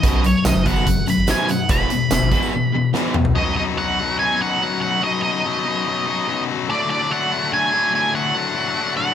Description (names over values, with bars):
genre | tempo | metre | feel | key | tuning
classic rock | 144 BPM | 4/4 | straight | unclear | A4 = 440 Hz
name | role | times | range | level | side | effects
octave-fuzz lead guitar | melody | 0.0-9.1 s | C#5 to B5 | -21 LUFS | right 2 dB | distortion
cranked stack guitar | riff | 0.0-3.3 s | B1 to E3 | -24 LUFS | right 6 dB | overdrive
tight distorted guitar | riff | 0.0-9.1 s | B1 to D#4 | -21 LUFS | left 7 dB | distortion
saturated sub bass | bass | 0.0-2.4 s | E1 to B1 | -21 LUFS | right 1 dB | none
huge arena drum kit | drums | 0.0-3.4 s | hi-hat, kick drum, snare drum, tambourine, toms | -22 LUFS | right 1 dB | none
tambourine | percussion | 0.0-2.5 s | none | -39 LUFS | right 10 dB | none
room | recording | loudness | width
little or no reverb | none | -17 LUFS | side -9 dB against mid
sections
0.0-3.4 A section; 3.4-9.1 B section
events
drum fill 2.9-3.4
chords
0.0 B5; 1.7 E5; 3.4 B; 6.7 D